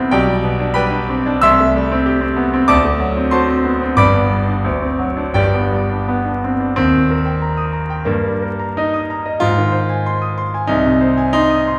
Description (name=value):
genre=classical, virtuoso piano study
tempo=82-96 BPM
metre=2/4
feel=rubato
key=G major, Eb major from 6.8 s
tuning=A4 = 439 Hz
part: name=bright concert grand piano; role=solo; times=0.0-11.8 s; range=G1 to E6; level=-16 LUFS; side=equal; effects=none
room=wet recital hall reverb, RT60 1.6 s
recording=recorded in a church or concert hall, vinyl crackle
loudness=-16 LUFS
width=mono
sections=0.0-6.8 A section; 6.8-11.8 B section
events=none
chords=0.1 G/B; 1.4 Am7/C; 2.7 D7; 4.0 G; 4.6 D7; 5.4 G; 6.8 Eb; 8.1 Eb/G; 9.4 Ab; 10.7 Ab/C